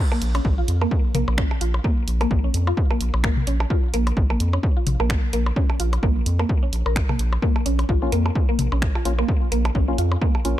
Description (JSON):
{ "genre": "minimal techno", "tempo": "129 BPM", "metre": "4/4", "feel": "swing 57% on 16ths", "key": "Bb minor", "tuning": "A4 = 439 Hz", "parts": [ { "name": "mallet-like synth pluck", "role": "riff", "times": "0.1-10.3 s", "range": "Bb3 to Bb4", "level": "-27 LUFS", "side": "equal", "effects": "wide subtle chorus, sidechain pumping, ping-pong delay" }, { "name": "electronic percussion blips and toms", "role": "percussion", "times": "0.1-10.4 s", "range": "none", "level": "-30 LUFS", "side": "left 1 dB", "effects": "digital delay" }, { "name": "round analog bass", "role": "bass", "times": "0.2-10.5 s", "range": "Bb1 to F2", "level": "-22 LUFS", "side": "equal", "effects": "sidechain pumping" }, { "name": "punchy analog drum machine", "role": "drums", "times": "0.2-10.6 s", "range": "finger snaps, hi-hat", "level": "-30 LUFS", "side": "right 2 dB", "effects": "none" }, { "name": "electronic kick drum", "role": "drums", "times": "0.4-10.3 s", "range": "none", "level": "-21 LUFS", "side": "equal", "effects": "none" }, { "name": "percussive organ stab", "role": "stabs", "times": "8.0-10.6 s", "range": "Bb3 to F4", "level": "-29 LUFS", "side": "left 2 dB", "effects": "wide subtle chorus, digital delay" } ], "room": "digital ambience", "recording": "dark, warm production", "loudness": "-19 LUFS", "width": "side -13 dB against mid", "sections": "0.0-10.6 A section", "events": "none", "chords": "0.0 Bb5" }